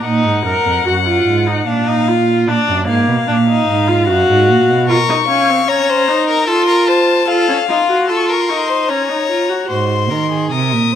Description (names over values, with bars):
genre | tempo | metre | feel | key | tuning
classical, baroque-style fugue for string quartet | 74 BPM | 3/4 | straight | Eb minor | A4 = 440 Hz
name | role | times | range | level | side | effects
warm violin | melody | 0.0-11.0 s | D5 to Eb6 | -18 LUFS | left 9 dB | none
rich violin | second line | 0.0, 4.9-11.0 s | F4 to F5 | -17 LUFS | left 3 dB | none
rich viola | accompaniment | 0.0-9.7 s | Bb3 to Bb4 | -16 LUFS | right 1 dB | none
rich cello | bass | 0.0-4.9, 9.7-11.0 s | F2 to Eb3 | -17 LUFS | right 4 dB | none
room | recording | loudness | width
moderate recital hall reverb, RT60 1.7 s | close, detailed microphones | -12 LUFS | side -9 dB against mid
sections
0.0-9.7 A section; 9.7-11.0 B section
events
none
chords
0.0 Ebm; 1.7 Bb; 2.5 Bb7; 4.1 Gbmaj9; 4.9 Bbm; 6.5 F; 7.3 F7; 9.7 Ab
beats
| 0.05 0.86 1.67 | 2.48 3.28 4.08 | 4.89 5.68 6.48 | 7.28 8.09 8.89 | 9.70 10.51